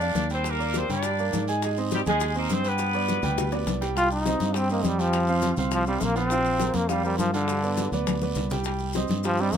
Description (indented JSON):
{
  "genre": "latin, salsa",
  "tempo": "205 BPM",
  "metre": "4/4",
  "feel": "straight",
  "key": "C minor",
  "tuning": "A4 = 439 Hz",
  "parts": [
    { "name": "warm horn section", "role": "melody", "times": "0.0-3.7 s", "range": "G3 to D5", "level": "-28 LUFS", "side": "equal", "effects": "none" },
    { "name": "clear baby grand piano", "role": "accompaniment", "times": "0.0-9.6 s", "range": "F3 to Ab5", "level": "-30 LUFS", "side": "right 6 dB", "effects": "none" },
    { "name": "fingered electric bass", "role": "bass", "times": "0.0-9.6 s", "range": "Bb1 to Ab2", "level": "-28 LUFS", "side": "left 1 dB", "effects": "none" },
    { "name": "bongos", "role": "percussion", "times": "0.0-9.6 s", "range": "none", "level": "-36 LUFS", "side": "left 7 dB", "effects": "none" },
    { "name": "congas", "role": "percussion", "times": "0.0-9.6 s", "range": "none", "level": "-32 LUFS", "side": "left 4 dB", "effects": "none" },
    { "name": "maracas", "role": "percussion", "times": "0.0-9.6 s", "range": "none", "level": "-41 LUFS", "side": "left 8 dB", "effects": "none" },
    { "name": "guiro", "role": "percussion", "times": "0.2-9.6 s", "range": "none", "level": "-40 LUFS", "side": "right 3 dB", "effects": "none" },
    { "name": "brilliant trombone", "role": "melody", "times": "4.0-9.6 s", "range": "D3 to F4", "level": "-25 LUFS", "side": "equal", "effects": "none" }
  ],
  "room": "light reverb",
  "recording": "minimal, uncompressed stereo recording",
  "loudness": "-23 LUFS",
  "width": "side -8 dB against mid",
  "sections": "0.0-4.0 A section; 4.0-9.6 B section",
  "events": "drum fill 3.2-4.0, 7.9-8.7; trombone solo 4.0-9.6",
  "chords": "0.4 Ebmaj7; 1.6 Abmaj7; 2.8 G; 4.0 Cm; 5.1 Bbsus2; 7.5 G7; 8.7 Cm"
}